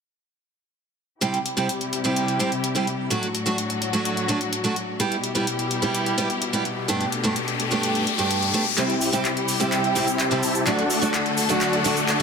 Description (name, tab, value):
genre	EDM, festival progressive house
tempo	127 BPM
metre	4/4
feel	straight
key	unclear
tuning	A4 = 440 Hz
part	picked steel-string acoustic guitar	accompaniment	1.2-12.2 s	G2 to G4	-24 LUFS	right 3 dB	vintage 12-bit sampler grit, ping-pong delay
part	clear symphonic string section	sustained chords	1.2-12.2 s	A2 to A4	-27 LUFS	left 3 dB	low-pass filter
part	house drum kit	drums	1.2-12.2 s	cabasa, handclaps, hi-hat	-28 LUFS	left 1 dB	none
part	riser	sound effects	6.5-12.2 s	none	-30 LUFS	left 7 dB	none
part	supersaw chords	riff	8.8-12.2 s	A3 to A5	-24 LUFS	equal	low-pass filter, ping-pong delay
room	moderate lush hall reverb, RT60 2.1 s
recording	dense, heavily limited modern master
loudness	-20 LUFS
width	side -6 dB against mid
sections	1.2-8.8 A section; 8.8-12.2 B section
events	filter sweep on string section 1.2-8.8; riser 6.5-8.8; build-up 8.8-12.2; drum fill 8.8-12.2; filter sweep on supersaw synth 8.8-12.2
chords	1.2 C; 3.1 D; 5.0 Em; 6.9 Gadd9; 8.8 C; 10.7 D